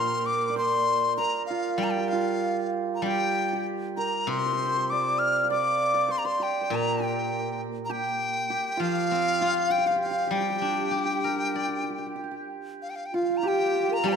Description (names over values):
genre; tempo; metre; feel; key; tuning
chinese traditional, Chinese chamber ensemble; 98 BPM; 4/4; rubato; G yu mode; A4 = 439 Hz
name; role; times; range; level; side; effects
dizi; melody; 0.0-14.2 s; F5 to F6; -27 LUFS; left 2 dB; none
hammered dulcimer; second line; 0.0-14.2 s; D4 to F5; -30 LUFS; right 8 dB; none
steel-string zither; accompaniment; 0.0-14.2 s; Bb2 to D5; -31 LUFS; left 4 dB; none
mellow hollow xiao; second line; 13.1-14.1 s; F4 to Bb5; -29 LUFS; left 5 dB; none
dark horsehead fiddle; second line; 13.2-14.2 s; F4 to G4; -27 LUFS; right 3 dB; none
room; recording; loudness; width
moderate scoring stage reverb, RT60 1.6 s; none; -24 LUFS; side -6 dB against mid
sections
0.0-12.8 A section; 12.8-14.2 B section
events
none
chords
none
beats
| 0.55 1.16 1.78 2.40 | 3.03 3.65 4.27 4.88 | 5.50 6.10 6.71 7.31 | 7.91 8.51 9.12 9.72 | 10.32 10.92 11.54 12.19 | 12.82 13.44 14.06